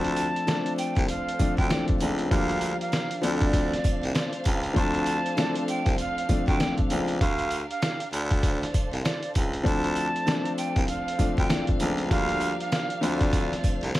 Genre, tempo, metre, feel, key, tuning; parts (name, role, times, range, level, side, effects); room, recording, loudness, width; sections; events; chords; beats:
hip hop, boom-bap hip-hop; 98 BPM; 4/4; swing 61% on 16ths; A4 = 439 Hz
breathy jazz flute; melody; 0.0-14.0 s; D5 to A5; -31 LUFS; right 2 dB; high-pass filter, low-pass filter
dark baby grand piano; accompaniment; 0.0-14.0 s; F3 to D4; -28 LUFS; left 2 dB; high-pass filter, low-pass filter
warm studio string section; sustained chords; 0.0-14.0 s; D4 to F5; -37 LUFS; right 1 dB; high-pass filter, low-pass filter
raspy baritone saxophone; bass; 0.0-13.9 s; C2 to D2; -29 LUFS; equal
trip hop sampler-style drum kit; drums; 0.0-14.0 s; hi-hat, kick drum, snare drum; -26 LUFS; equal; vintage 12-bit sampler grit
sleigh bells; percussion; 0.2-14.0 s; -43 LUFS; right 6 dB
light reverb; vinyl crackle; -23 LUFS; side -16 dB against mid
0.0-14.0 A section
0.0 Dm7; 2.3 Gm7/D; 3.2 F6; 7.2 Gm7/D; 8.1 F6; 12.1 Gm7/D; 13.0 F6/D
0.47 1.09 1.70 | 2.31 2.92 3.54 4.15 | 4.76 5.37 5.99 6.60 | 7.21 7.82 8.44 9.05 | 9.66 10.27 10.88 11.50 | 12.11 12.72 13.33 13.95